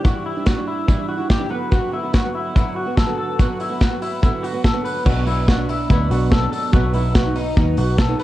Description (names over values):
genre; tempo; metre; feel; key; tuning
jangly indie pop; 144 BPM; 4/4; straight; unclear; A4 = 440 Hz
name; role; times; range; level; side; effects
fingerpicked steel-string acoustic guitar; accompaniment; 0.0-8.2 s; B2 to F#4; -25 LUFS; right 4 dB; tape echo
electric guitar through a small old amp; arpeggios; 0.0-8.2 s; D#4 to B4; -25 LUFS; left 3 dB; analog chorus, tape echo
modern studio drum kit; drums; 0.0-8.2 s; crash cymbal, hi-hat, kick drum, snare drum; -19 LUFS; equal; tape echo
vintage muted picked electric bass; bass; 5.1-8.1 s; B1 to D#2; -20 LUFS; equal; none
room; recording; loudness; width
light reverb, studio reverb; echo-heavy mix, cassette tape; -16 LUFS; side -15 dB against mid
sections
0.0-5.1 A section; 5.1-8.2 B section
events
none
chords
0.0 Cadd9 (rootless); 1.5 Bm/D; 5.1 Bm; 6.7 B